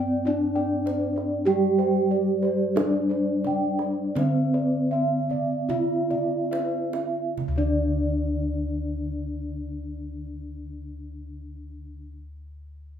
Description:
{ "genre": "Javanese gamelan", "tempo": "34-52 BPM", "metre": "4/4", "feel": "straight", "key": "unclear", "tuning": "A4 = 440 Hz", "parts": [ { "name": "gamelan-type bronze metallophone", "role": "melody", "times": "0.0-12.1 s", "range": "C4-40c to G4-20c", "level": "-26 LUFS", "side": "right 1 dB", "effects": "none" }, { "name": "gamelan-type bronze metallophone", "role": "accompaniment", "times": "0.0-12.1 s", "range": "D3 to C4-40c", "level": "-30 LUFS", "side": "left 2 dB", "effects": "none" }, { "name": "gamelan-type bossed gongs", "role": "arpeggios", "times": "0.0-12.1 s", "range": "C5-40c to G5-20c", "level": "-32 LUFS", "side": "left 3 dB", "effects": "none" }, { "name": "gamelan-type bronze metallophone", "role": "arpeggios", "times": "0.0-12.1 s", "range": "C5-40c to G5-20c", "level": "-32 LUFS", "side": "right 4 dB", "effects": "none" }, { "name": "gamelan-type bossed gongs", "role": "bass", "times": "0.0-12.0 s", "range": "D2 to G4-20c", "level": "-32 LUFS", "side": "left 1 dB", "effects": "none" }, { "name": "kendang", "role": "percussion", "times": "0.6-8.2 s", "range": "none", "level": "-34 LUFS", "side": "right 4 dB", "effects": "none" } ], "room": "moderate large studio reverb, RT60 0.8 s", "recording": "band playing live in one room", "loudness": "-22 LUFS", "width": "side -9 dB against mid", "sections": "0.0-7.4 A section; 7.4-13.0 B section", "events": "slowing down 0.0-7.4; drum fill 5.3-7.4", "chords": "none", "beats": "0.26 | 1.46 2.76 4.16 5.69 | 7.37 9.12 10.88" }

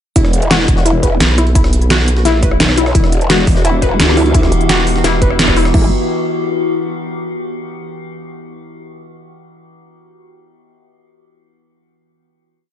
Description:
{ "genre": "dark technical drum and bass", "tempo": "172 BPM", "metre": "4/4", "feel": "straight", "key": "E minor", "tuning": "A4 = 436 Hz", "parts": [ { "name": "warbly dusty pluck", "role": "arpeggios", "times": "0.2-5.9 s", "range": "E4 to B4", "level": "-18 LUFS", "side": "left 2 dB", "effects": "chorus, sidechain pumping, diffuse ambient delay" }, { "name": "growl bass", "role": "bass", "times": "0.2-5.9 s", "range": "E1 to D2", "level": "-14 LUFS", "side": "equal", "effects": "chorus, overdrive" }, { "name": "dubstep drum kit", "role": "drums", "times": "0.2-5.8 s", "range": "crash cymbal, kick drum", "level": "-14 LUFS", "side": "equal", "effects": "studio reverb" }, { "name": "dubstep drum kit", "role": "drums", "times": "0.2-5.7 s", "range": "hi-hat, rim click, snare drum", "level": "-16 LUFS", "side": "equal", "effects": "studio reverb" }, { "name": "jungle sampler-style drum kit", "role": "drums", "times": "0.2-5.7 s", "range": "hi-hat, snare drum", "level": "-24 LUFS", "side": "equal", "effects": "none" }, { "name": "vowel-sweep wobble bass", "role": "bass", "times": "1.2-5.7 s", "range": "E1 to B1", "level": "-14 LUFS", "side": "equal", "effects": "chorus" }, { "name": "metallic inharmonic drone", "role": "sustained chords", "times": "3.6-5.9 s", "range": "E3 to G4", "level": "-19 LUFS", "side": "left 1 dB", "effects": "chorus, built-in reverb, phaser, sidechain pumping" } ], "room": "light reverb, digital ambience", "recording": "nothing above 10.9 kHz", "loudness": "-10 LUFS", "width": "side -10 dB against mid", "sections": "0.2-5.7 drop; 5.7-7.1 final chord", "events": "drop 0.2-5.7; band accent 5.4", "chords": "0.2 Em", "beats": "| 0.16 0.51 0.86 1.21 | 1.55 1.90 2.25 2.60 | 2.95 3.30 3.65 4.00 | 4.34 4.69 5.04 5.39 | 5.74" }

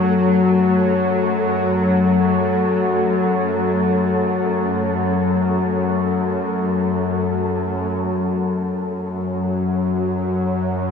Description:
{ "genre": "dark ambient drone", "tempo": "free time", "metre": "none", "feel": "none", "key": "F# minor", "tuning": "A4 = 440 Hz", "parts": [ { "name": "dark analog pad", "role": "sustained chords", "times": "0.0-8.0 s", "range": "F#4 to F#5", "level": "-27 LUFS", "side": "right 1 dB", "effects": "chorus, phaser" }, { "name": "bowed-like drone", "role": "drone", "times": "0.0-10.9 s", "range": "F#2 to F#3", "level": "-18 LUFS", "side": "left 2 dB", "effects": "built-in reverb" }, { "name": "wind-like tuned noise texture", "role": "texture", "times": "0.0-8.0 s", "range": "A3 to A4", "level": "-25 LUFS", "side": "left 1 dB", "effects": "built-in reverb" } ], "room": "wet huge ambient reverb, RT60 8.4 s", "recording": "studio reverb", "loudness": "-17 LUFS", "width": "side -6 dB against mid", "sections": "0.0-8.0 A section; 8.0-10.9 B section", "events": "none", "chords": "0.0 F#m; 8.0 F#5", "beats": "free time" }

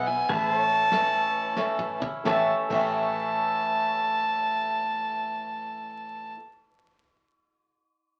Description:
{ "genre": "honky-tonk and classic country", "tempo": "85-100 BPM", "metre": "3/4", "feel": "swing 64% on 8ths", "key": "A major", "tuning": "A4 = 440 Hz", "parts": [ { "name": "clear fiddle", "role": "melody", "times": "0.0-6.3 s", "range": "G#5 to A5", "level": "-28 LUFS", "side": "equal", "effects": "none" }, { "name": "picked swing-style acoustic guitar", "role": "accompaniment", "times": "0.0-6.4 s", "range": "A2 to E4", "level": "-35 LUFS", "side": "equal", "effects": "none" }, { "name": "warm upright piano", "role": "accompaniment", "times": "0.0-6.3 s", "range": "G#4 to E5", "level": "-36 LUFS", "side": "equal", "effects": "none" }, { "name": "pedal steel guitar", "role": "sustained chords", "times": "0.0-5.9 s", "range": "G#4 to E5", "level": "-36 LUFS", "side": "equal", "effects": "none" }, { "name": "vintage muted fingered electric bass", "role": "bass", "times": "0.0-6.3 s", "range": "A1 to B1", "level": "-42 LUFS", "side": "equal", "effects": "none" }, { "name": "soft brush drum kit", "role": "drums", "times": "0.3-2.8 s", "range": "crash cymbal, kick drum, ride cymbal, snare drum, toms", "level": "-40 LUFS", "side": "equal", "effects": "none" }, { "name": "bright upright piano", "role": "second line", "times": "2.2-6.3 s", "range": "G4 to E5", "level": "-34 LUFS", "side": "equal", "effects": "none" } ], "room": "wet small room reverb, RT60 0.6 s", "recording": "very old 78 rpm record, vinyl crackle", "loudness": "-26 LUFS", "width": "mono", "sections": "0.0-2.3 A section; 2.3-6.5 B section", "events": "slowing down 0.0-2.3; drum fill 1.6-2.3", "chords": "0.3 A", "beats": "| 0.30 0.92 1.57 | 2.26 2.97 3.67 | 4.38 5.09 5.80" }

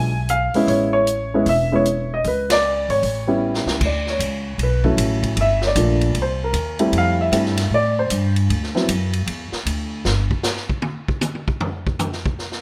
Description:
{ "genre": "jazz piano trio", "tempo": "154 BPM", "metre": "4/4", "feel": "swing 65% on 8ths", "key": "unclear", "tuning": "A4 = 440 Hz", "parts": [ { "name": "dark grand piano", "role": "melody", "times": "0.0-8.9 s", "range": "F#3 to G#5", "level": "-21 LUFS", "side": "equal", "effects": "none" }, { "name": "upright bass", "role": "bass", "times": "0.0-10.3 s", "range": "E1 to A2", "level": "-24 LUFS", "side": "equal", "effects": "none" }, { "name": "swinging big-band drum kit", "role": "drums", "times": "0.3-12.6 s", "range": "crash cymbal, hi-hat, kick drum, ride cymbal, snare drum, toms", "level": "-28 LUFS", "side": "equal", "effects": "none" } ], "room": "light reverb", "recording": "none", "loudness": "-20 LUFS", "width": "mono", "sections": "0.0-3.8 A section; 3.8-12.6 B section", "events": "band accent 2.4; drum fill 3.4-3.8; grand piano solo 3.8-12.6; drum solo 10.1-12.6", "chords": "0.0 E(b9) (rootless); 0.7 Amaj9; 2.2 C#5; 3.0 A7; 3.8 Dmaj7; 5.4 Gm7; 6.2 Cm7; 6.9 Fmaj9; 8.5 Dadd9; 10.1 N.C.", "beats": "0.29 | 0.69 1.07 1.47 1.86 | 2.25 2.64 3.03 3.42 | 3.81 4.20 4.59 4.98 | 5.37 5.76 6.15 6.54 | 6.93 7.33 7.72 8.11 | 8.50 8.89 9.28 9.67 | 10.05 10.45 10.83 11.22 | 11.61 12.00 12.39" }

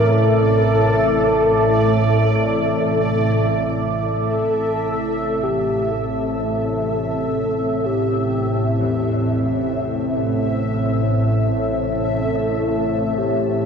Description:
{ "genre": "dark ambient drone", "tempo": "free time", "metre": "none", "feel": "none", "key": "unclear", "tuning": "A4 = 440 Hz", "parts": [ { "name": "mellow horn-like synth lead", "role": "melody", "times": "0.0-13.7 s", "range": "G4 to Bb4", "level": "-22 LUFS", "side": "left 2 dB", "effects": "chorus, ping-pong delay" }, { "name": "deep dark ambient pad", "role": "sustained chords", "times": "0.0-13.7 s", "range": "C4 to A5", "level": "-22 LUFS", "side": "right 2 dB", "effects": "chorus, built-in reverb" }, { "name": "organ-like drone", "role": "drone", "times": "0.0-13.7 s", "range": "A1 to A2", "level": "-21 LUFS", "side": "equal", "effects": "ensemble chorus, built-in reverb" }, { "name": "bubbling stepped-filter texture", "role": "texture", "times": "0.0-13.7 s", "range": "D5 to E5", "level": "-28 LUFS", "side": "equal", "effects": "chorus, built-in reverb" }, { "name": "clear concert grand piano", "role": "arpeggios", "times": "8.8-13.7 s", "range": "E2", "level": "-37 LUFS", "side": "left 2 dB", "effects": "ping-pong delay" } ], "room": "wet huge ambient reverb, RT60 7.8 s", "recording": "cassette tape", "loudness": "-17 LUFS", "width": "side -6 dB against mid", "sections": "0.0-4.0 A section; 4.0-13.7 B section", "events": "fade-in on grand piano 4.0-13.7", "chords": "0.0 Am", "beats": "free time" }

